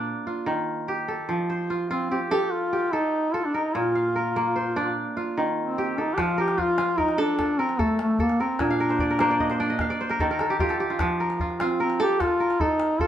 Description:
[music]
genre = west african traditional, West African string and xylophone music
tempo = 99 BPM (dotted quarters)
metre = 12/8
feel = straight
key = F mixolydian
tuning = A4 = 440 Hz
[part]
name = mellow duduk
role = melody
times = 0.0-13.1 s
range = A3 to G4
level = -24 LUFS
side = equal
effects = none
[part]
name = kora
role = arpeggios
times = 0.0-13.1 s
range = Bb2 to F5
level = -25 LUFS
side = right 1 dB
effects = none
[part]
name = calabash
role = percussion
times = 6.2-13.1 s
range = none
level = -32 LUFS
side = left 1 dB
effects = none
[sound]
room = wet studio reverb, RT60 0.6 s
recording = heard from further back in the room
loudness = -22 LUFS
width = side -10 dB against mid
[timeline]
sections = 0.0-6.2 A section; 6.2-13.1 A section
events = kora fill 8.7-11.0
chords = 0.1 Eb; 1.3 F; 3.7 Bb; 5.0 Eb; 6.2 F; 8.6 Bb; 9.8 Eb; 11.0 F

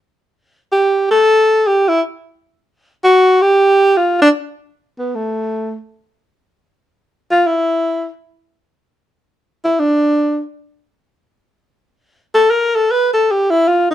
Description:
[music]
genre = jazz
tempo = free time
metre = none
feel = none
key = G mixolydian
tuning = A4 = 440 Hz
[part]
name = breathy tenor saxophone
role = solo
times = 0.7-13.9 s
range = A3 to B4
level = -12 LUFS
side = equal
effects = none
[sound]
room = light reverb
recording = minimal, uncompressed stereo recording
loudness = -12 LUFS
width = side -12 dB against mid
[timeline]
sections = 0.0-4.7 A section; 4.7-13.9 A section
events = tenor saxophone solo 0.0-4.7, 4.7-13.9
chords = none

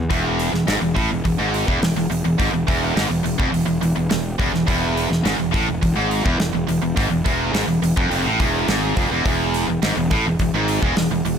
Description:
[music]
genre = heavy metal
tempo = 105 BPM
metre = 4/4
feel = straight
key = E major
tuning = A4 = 440 Hz
[part]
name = fuzz fingered electric bass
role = bass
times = 0.0-11.4 s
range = E1 to A1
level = -25 LUFS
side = equal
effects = overdrive
[part]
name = tight distorted guitar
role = riff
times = 0.1-11.4 s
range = E2 to A2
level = -23 LUFS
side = left 11 dB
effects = distortion
[part]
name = tight distorted guitar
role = riff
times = 0.1-11.4 s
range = E2 to A2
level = -22 LUFS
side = right 10 dB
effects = distortion
[part]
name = modern studio drum kit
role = drums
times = 0.1-11.4 s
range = hi-hat, kick drum, snare drum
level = -24 LUFS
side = equal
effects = none
[sound]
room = small room ambience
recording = none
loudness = -17 LUFS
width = side -7 dB against mid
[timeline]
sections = 0.1-11.4 A section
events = none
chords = 0.1 E

